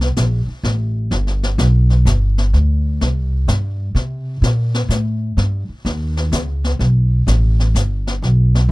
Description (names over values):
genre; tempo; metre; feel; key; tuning
jazz piano trio; 127 BPM; 3/4; swing 66% on 8ths; unclear; A4 = 440 Hz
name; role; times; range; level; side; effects
upright bass; bass; 0.0-8.7 s; G1 to C3; -15 LUFS; equal; none
jazz brush drum kit; drums; 0.0-8.7 s; brushed snare drum, hi-hat, snare drum; -24 LUFS; left 2 dB; none
room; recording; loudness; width
little or no reverb; dry, close 1970s-style studio recording; -15 LUFS; side -21 dB against mid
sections
0.0-8.7 A section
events
none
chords
none